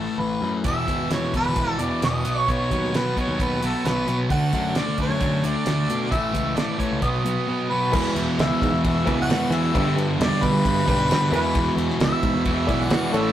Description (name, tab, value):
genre	classic rock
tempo	132 BPM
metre	4/4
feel	straight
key	unclear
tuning	A4 = 440 Hz
part	warm harmonica	melody	0.0-13.3 s	A4 to F#5	-26 LUFS	equal	slapback echo
part	sludgy distorted guitar	riff	0.0-13.3 s	E2 to E4	-26 LUFS	left 3 dB	overdrive
part	growling picked electric bass	bass	0.0-13.3 s	E1 to E3	-28 LUFS	equal	overdrive
part	cranked stack guitar	riff	0.6-13.3 s	E2 to D4	-27 LUFS	right 5 dB	overdrive
part	damped 70s drum kit	drums	0.6-13.2 s	crash cymbal, hi-hat, kick drum, ride cymbal, snare drum	-26 LUFS	right 1 dB	none
part	tack piano	accompaniment	7.9-13.3 s	D4 to D5	-30 LUFS	left 1 dB	none
room	moderate studio reverb, RT60 0.6 s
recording	rough rehearsal-room recording, tube saturation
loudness	-20 LUFS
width	side -11 dB against mid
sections	0.0-7.9 A section; 7.9-13.3 B section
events	none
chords	0.0 A5; 0.6 E; 2.2 B; 4.3 D; 6.1 A; 7.0 B; 7.9 E; 9.7 G; 11.3 E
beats	0.19 | 0.65 1.11 1.56 2.02 | 2.48 2.93 3.39 3.85 | 4.30 4.76 5.21 5.67 | 6.12 6.58 7.03 7.48 | 7.93 8.39 8.84 9.29 | 9.74 10.20 10.65 11.10 | 11.55 12.01 12.46 12.91